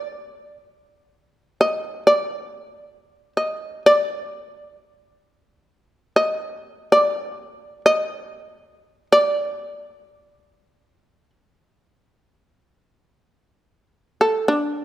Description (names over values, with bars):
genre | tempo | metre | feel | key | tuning
japanese traditional, Japanese chamber music | free time | none | none | unclear | A4 = 440 Hz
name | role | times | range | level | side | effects
shamisen | solo | 0.0-14.8 s | D4 to Eb5 | -17 LUFS | equal | none
room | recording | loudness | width
moderate recital hall reverb, RT60 1.7 s | none | -18 LUFS | side -14 dB against mid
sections
0.0-14.8 A section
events
none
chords
none